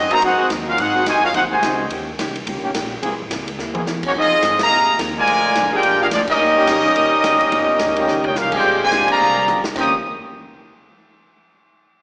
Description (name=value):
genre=jazz, big band swing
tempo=214 BPM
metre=4/4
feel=swing 59% on 8ths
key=Eb major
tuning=A4 = 439 Hz
part: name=clear trumpet section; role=melody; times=0.0-1.9, 4.1-9.9 s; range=Bb3 to Eb6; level=-15 LUFS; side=equal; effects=slapback echo
part: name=brilliant trombone section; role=second line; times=0.0-1.9, 4.1-9.9 s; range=C3 to G4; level=-25 LUFS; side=equal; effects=slapback echo
part: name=hollow-body jazz guitar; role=accompaniment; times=0.0-9.9 s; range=Ab2 to C5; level=-28 LUFS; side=equal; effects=slapback echo
part: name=upright bass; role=bass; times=0.0-9.9 s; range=G1 to Ab2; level=-31 LUFS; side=equal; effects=none
part: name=clear trombone section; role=sustained chords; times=0.1-8.9 s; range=D3 to G#4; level=-24 LUFS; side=equal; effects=none
part: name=swinging big-band drum kit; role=drums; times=0.1-9.8 s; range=crash cymbal, hi-hat, kick drum, ride cymbal, snare drum, toms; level=-26 LUFS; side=equal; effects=none
part: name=clear baby grand piano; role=accompaniment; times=8.9-9.9 s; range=Ab3 to G4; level=-26 LUFS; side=equal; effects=slapback echo
room=light reverb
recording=live gig heard through the venue's PA, recital hall reverb, small speaker sound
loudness=-14 LUFS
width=side -39 dB against mid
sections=0.0-8.6 A section; 8.6-9.8 B section; 9.8-10.9 C section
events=drum fill 3.6, 8.1, 9.2-9.8; band accent 4.6, 6.3, 9.1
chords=0.0 Ab7; 1.9 Eb7; 3.0 C7alt; 4.2 Fm7; 5.3 Bb7; 6.4 Eb7; 8.6 Bb13; 9.8 Eb13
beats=0.22 0.50 | 0.78 1.06 1.34 1.63 | 1.91 2.19 2.47 2.75 | 3.03 3.31 3.59 3.87 | 4.15 4.43 4.71 4.99 | 5.27 5.55 5.83 6.12 | 6.39 6.68 6.96 7.24 | 7.52 7.80 8.08 8.36 | 8.64 8.92 9.20 9.48 | 9.76